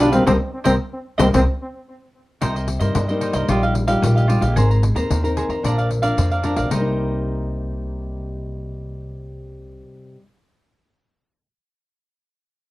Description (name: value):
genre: samba and choro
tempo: 112 BPM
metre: 4/4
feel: straight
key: C minor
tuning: A4 = 439 Hz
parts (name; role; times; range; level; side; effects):
- mellow trombone; melody; 0.0-1.4 s; C4 to D4; -20 LUFS; equal; tape echo
- cavaquinho; accompaniment; 0.0-10.2 s; D4 to Bb5; -25 LUFS; right 2 dB; none
- nylon-string guitar; accompaniment; 0.0-10.3 s; G2 to Bb4; -24 LUFS; left 2 dB; none
- upright bass; bass; 0.0-9.8 s; Ab1 to G2; -21 LUFS; equal; none
- pandeiro; percussion; 0.0-6.8 s; none; -25 LUFS; left 3 dB; none
room: light reverb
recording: worn, warbling old tape, cassette tape, warbly pitch drift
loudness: -17 LUFS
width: side -18 dB against mid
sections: 0.0-2.4 A section; 2.4-6.7 B section; 6.7-11.0 C section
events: band accent 0.3-2.4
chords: 0.3 Cm7; 3.5 Ebadd9/Bb; 4.6 Abadd9; 5.6 Bb; 6.7 Cm7